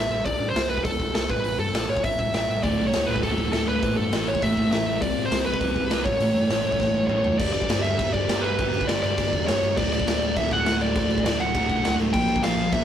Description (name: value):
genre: punk rock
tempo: 202 BPM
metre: 4/4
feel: straight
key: unclear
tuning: A4 = 440 Hz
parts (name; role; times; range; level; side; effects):
- high-gain lead guitar; melody; 0.0-12.8 s; A4 to G5; -25 LUFS; equal; distortion
- overdriven picked electric bass; bass; 0.0-12.8 s; D1 to A2; -31 LUFS; equal; none
- raw garage drum kit; drums; 0.3-12.8 s; crash cymbal, hi-hat, kick drum, snare drum, toms; -26 LUFS; equal; none
- sludgy distorted guitar; riff; 2.6-12.8 s; D2 to C4; -26 LUFS; right 1 dB; overdrive
room: moderate stone room reverb, RT60 1.3 s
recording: rough rehearsal-room recording, tube saturation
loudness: -21 LUFS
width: side -9 dB against mid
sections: 0.0-7.4 A section; 7.4-12.8 B section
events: drum fill 6.8-7.4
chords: 0.3 Amadd11/C; 1.3 A5; 2.6 D5; 3.8 A5; 5.0 C5; 6.1 A; 7.4 G5; 9.8 D; 12.1 Bb5